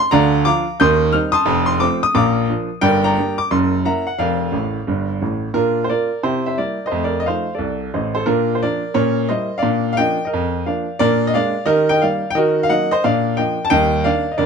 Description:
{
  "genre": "jazz, stride piano",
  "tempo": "176 BPM",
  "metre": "4/4",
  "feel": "swing 64% on 8ths",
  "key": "Bb major",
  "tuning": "A4 = 439 Hz",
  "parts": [
    { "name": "clear upright piano", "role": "solo", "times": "0.0-14.5 s", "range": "F1 to G6", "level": "-15 LUFS", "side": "equal", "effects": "none" }
  ],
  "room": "moderate studio reverb, RT60 0.6 s",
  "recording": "close, detailed microphones",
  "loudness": "-15 LUFS",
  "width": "side -6 dB against mid",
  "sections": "0.0-5.5 A section; 5.5-14.5 B section",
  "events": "upright piano fill 4.5-5.5",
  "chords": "0.1 Bb/D; 0.8 Cm/Eb; 1.5 F; 2.2 Bb; 2.8 Gm; 3.5 Gb7; 4.2 Bb/F; 4.9 F; 5.5 Bb; 6.2 C7; 6.9 F7; 8.3 Bb; 9.0 Bbdim7; 9.6 Bb; 11.0 Bb7; 11.7 Eb; 12.4 Ebm; 13.0 Bb; 13.7 Ebmaj7",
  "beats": "| 0.11 0.45 0.79 1.13 | 1.47 1.81 2.15 2.49 | 2.83 3.17 3.51 3.85 | 4.19 4.53 4.87 5.21 | 5.55 5.89 6.23 6.57 | 6.91 7.25 7.59 7.93 | 8.27 8.61 8.96 9.30 | 9.64 9.98 10.32 10.66 | 11.00 11.34 11.68 12.02 | 12.36 12.70 13.04 13.38 | 13.72 14.06 14.40"
}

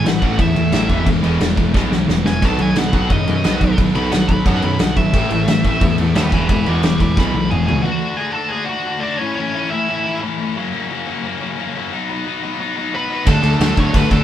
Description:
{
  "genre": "punk rock",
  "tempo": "177 BPM",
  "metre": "4/4",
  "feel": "straight",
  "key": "unclear",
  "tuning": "A4 = 440 Hz",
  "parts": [
    { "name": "high-gain lead guitar", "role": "melody", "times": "0.0-10.2, 12.9-14.2 s", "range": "C#4 to D6", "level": "-22 LUFS", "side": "equal", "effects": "distortion" },
    { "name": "cranked stack guitar", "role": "riff", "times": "0.0-14.2 s", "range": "F#2 to F#4", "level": "-21 LUFS", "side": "left 5 dB", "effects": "overdrive" },
    { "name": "crunchy overdriven guitar", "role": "riff", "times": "0.0-7.8, 13.3-14.2 s", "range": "E2 to D4", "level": "-24 LUFS", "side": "right 7 dB", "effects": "none" },
    { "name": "thick fuzz guitar", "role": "riff", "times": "0.0-7.8, 13.3-14.2 s", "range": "E2 to D4", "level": "-24 LUFS", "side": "right 2 dB", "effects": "distortion" },
    { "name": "fuzz picked electric bass", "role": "bass", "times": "0.0-7.8, 13.3-14.2 s", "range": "E1 to F#2", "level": "-20 LUFS", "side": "equal", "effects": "overdrive" },
    { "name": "loose indie drum kit", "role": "drums", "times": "0.1-7.8, 13.3-14.2 s", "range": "crash cymbal, kick drum, snare drum, toms", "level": "-18 LUFS", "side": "equal", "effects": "none" }
  ],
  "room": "light reverb",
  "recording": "band playing live in one room",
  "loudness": "-15 LUFS",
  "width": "side -11 dB against mid",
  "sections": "0.0-7.9 A section; 7.9-14.2 B section",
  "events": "lead electric guitar solo 0.0-7.9; drum fill 1.7-2.4, 7.2-7.9",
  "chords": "0.0 A5; 0.9 E; 2.4 B; 5.1 A5; 6.3 E; 7.9 D; 9.2 A; 10.6 F#; 11.9 B; 13.3 D",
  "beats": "0.05 0.39 0.73 | 1.07 1.41 1.74 2.08 | 2.42 2.76 3.10 3.44 | 3.78 4.12 4.46 4.80 | 5.14 5.48 5.82 6.16 | 6.49 6.83 7.17 7.51 | 7.85 8.19 8.53 8.87 | 9.21 9.55 9.88 10.22 | 10.56 10.90 11.24 11.58 | 11.91 12.25 12.59 12.93 | 13.27 13.61 13.94"
}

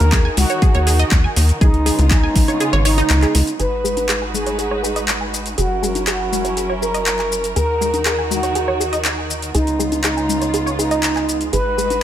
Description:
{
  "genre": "progressive house",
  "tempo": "121 BPM",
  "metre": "4/4",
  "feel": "straight",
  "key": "G# minor",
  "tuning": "A4 = 441 Hz",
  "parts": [
    { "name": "expressive synth lead", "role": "melody", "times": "0.0-12.0 s", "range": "D#4 to B4", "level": "-21 LUFS", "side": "right 1 dB", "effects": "chorus, sidechain pumping, digital delay" },
    { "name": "muted studio string section", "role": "sustained chords", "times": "0.0-12.0 s", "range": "C#3 to B4", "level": "-26 LUFS", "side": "right 1 dB", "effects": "sidechain pumping" },
    { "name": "tight sequencer bass", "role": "bass", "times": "0.0-12.0 s", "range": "F#1 to D#2", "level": "-20 LUFS", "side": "equal", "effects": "sidechain pumping" },
    { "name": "deep house drum kit", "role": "drums", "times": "0.0-12.0 s", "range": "handclaps, hi-hat, shaker", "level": "-22 LUFS", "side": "left 1 dB", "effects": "overdrive, sidechain pumping on hats, small room ambience, sidechain pumping on perc" },
    { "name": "congas", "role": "percussion", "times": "0.0-12.0 s", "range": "none", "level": "-28 LUFS", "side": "left 8 dB", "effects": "sidechain pumping on perc, small room ambience" },
    { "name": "wide unison pluck", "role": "arpeggios", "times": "0.1-11.8 s", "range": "D#4 to G#5", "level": "-25 LUFS", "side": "right 2 dB", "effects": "vintage 12-bit sampler grit, sidechain pumping, digital delay" },
    { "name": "electronic kick drum", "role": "drums", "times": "0.1-2.5 s", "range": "none", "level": "-14 LUFS", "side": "equal", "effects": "small room ambience" }
  ],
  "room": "light reverb, digital ambience",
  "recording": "none",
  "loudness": "-15 LUFS",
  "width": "side -11 dB against mid",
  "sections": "0.0-3.6 A section; 3.6-12.0 B section",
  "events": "kick drops out 2.6-3.6",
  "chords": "0.0 D#m; 1.6 C#7; 3.6 G#m7; 5.6 F#7; 7.6 D#m; 9.5 C#7; 11.5 G#m7",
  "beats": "0.12 0.62 1.12 | 1.61 2.11 2.60 3.10 | 3.60 4.09 4.59 5.08 | 5.58 6.08 6.57 7.07 | 7.56 8.06 8.55 9.05 | 9.55 10.04 10.54 11.03 | 11.53 12.03"
}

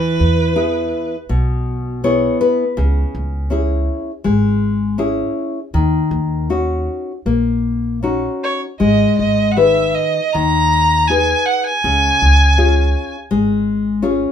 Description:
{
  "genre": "fado-style ballad",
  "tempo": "81 BPM",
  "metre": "4/4",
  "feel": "rubato",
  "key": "unclear",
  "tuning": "A4 = 441 Hz",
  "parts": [
    { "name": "rich violin", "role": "melody", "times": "0.0-1.1, 8.4-13.1 s", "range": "B4 to A#5", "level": "-16 LUFS", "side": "right 2 dB", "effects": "none" },
    { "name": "nylon-string guitar", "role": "accompaniment", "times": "0.0-14.3 s", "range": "B2 to C#5", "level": "-17 LUFS", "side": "left 3 dB", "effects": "none" },
    { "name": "upright bass", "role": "bass", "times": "0.0-14.2 s", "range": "G#1 to E2", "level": "-18 LUFS", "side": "equal", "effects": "none" }
  ],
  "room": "moderate studio reverb, RT60 0.6 s",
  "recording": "minimal, uncompressed stereo recording",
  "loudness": "-14 LUFS",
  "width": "side -8 dB against mid",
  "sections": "0.0-14.3 A section",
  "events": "nylon-string guitar fill 1.7-2.8",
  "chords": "0.0 E; 2.8 C#m; 5.7 D#m7; 8.8 G#m; 11.8 C#",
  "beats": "0.56 1.30 2.04 | 2.78 3.52 4.26 5.00 | 5.74 6.50 7.26 8.04 | 8.81 9.57 10.34 11.09 | 11.84 12.58 13.31 14.03"
}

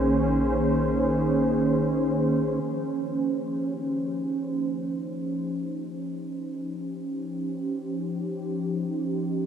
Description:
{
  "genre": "ambient",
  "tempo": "free time",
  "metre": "none",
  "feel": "none",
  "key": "unclear",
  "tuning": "A4 = 437 Hz",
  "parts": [
    { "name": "warm analog pad", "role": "sustained chords", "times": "0.0-9.5 s", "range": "Eb3 to C5", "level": "-25 LUFS", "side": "right 1 dB", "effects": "chorus" },
    { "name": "round analog bass", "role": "bass", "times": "0.0-2.6 s", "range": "Bb1", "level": "-34 LUFS", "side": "left 1 dB", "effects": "none" }
  ],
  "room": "wet huge ambient reverb, RT60 7.1 s",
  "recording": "in a vast, echoing space",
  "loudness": "-25 LUFS",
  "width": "side -8 dB against mid",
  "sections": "0.0-2.6 A section; 2.6-9.5 B section",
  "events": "filter sweep on analog synth pad 2.6-9.5",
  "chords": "0.0 Bbm11; 2.6 Eb13/F",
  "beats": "free time"
}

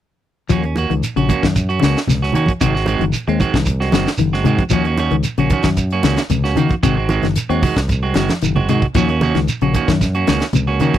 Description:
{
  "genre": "afrobeat",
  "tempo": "114 BPM",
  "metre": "4/4",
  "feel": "straight",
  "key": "Eb dorian",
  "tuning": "A4 = 444 Hz",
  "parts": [
    { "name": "semi-hollow electric guitar", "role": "arpeggios", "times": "0.5-10.9 s", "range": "C3 to C4", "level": "-19 LUFS", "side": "left 8 dB", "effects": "none" },
    { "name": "electric guitar at the edge of break-up", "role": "stabs", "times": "0.5-11.0 s", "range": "Eb3 to Gb4", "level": "-20 LUFS", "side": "right 6 dB", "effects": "none" },
    { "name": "fingered electric bass", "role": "bass", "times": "0.5-10.9 s", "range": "Gb1 to Eb3", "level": "-19 LUFS", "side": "equal", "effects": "none" },
    { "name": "tight funk drum kit", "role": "drums", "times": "0.5-11.0 s", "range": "hi-hat, kick drum, snare drum", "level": "-21 LUFS", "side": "equal", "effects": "none" },
    { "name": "shekere", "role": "percussion", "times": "0.5-11.0 s", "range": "none", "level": "-24 LUFS", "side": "right 3 dB", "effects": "none" },
    { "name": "congas", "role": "percussion", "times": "0.8-11.0 s", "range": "none", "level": "-23 LUFS", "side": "right 3 dB", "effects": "none" }
  ],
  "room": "little or no reverb",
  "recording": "dry, close 1970s-style studio recording",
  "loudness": "-14 LUFS",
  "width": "side -11 dB against mid",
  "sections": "0.5-11.0 A section",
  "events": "drum fill 8.2-9.0",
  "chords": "0.5 Ebm7; 2.6 Ab7; 4.7 Ebm7; 6.8 Ab7; 9.0 Ebm7",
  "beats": "| 0.50 1.02 1.55 2.08 | 2.61 3.14 3.67 4.19 | 4.72 5.25 5.78 6.31 | 6.84 7.37 7.90 8.43 | 8.96 9.48 10.01 10.54"
}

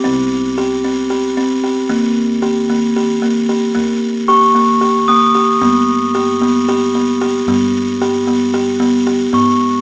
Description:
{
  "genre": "contemporary instrumental, chamber music in an uneven meter",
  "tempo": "226 BPM (eighths)",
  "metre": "7/8",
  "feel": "straight",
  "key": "unclear",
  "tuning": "A4 = 438 Hz",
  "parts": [
    { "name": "buzzing kalimba", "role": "arpeggios", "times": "0.0-9.6 s", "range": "A#3 to G4", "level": "-13 LUFS", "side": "equal", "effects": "none" },
    { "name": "glockenspiel with soft plastic mallets", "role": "texture", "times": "0.0-0.2, 4.3-5.8, 9.3-9.8 s", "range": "C#6 to D#6", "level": "-14 LUFS", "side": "equal", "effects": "none" },
    { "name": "upright bass", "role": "bass", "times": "0.1-9.8 s", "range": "C2 to G#2", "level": "-28 LUFS", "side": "equal", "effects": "none" }
  ],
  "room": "light reverb",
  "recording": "small speaker sound",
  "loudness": "-11 LUFS",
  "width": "side -40 dB against mid",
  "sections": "0.0-9.3 A section",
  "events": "none",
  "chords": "0.0 C5; 1.9 D#; 5.6 G",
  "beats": "| 0.05 0.32 0.58 0.84 1.11 1.37 1.64 | 1.90 2.17 2.43 2.69 2.96 3.22 3.49 | 3.75 4.02 4.29 4.55 4.82 5.08 5.35 | 5.61 5.88 6.14 6.41 6.68 6.94 7.21 | 7.47 7.74 8.01 8.27 8.54 8.81 9.07 | 9.34 9.61"
}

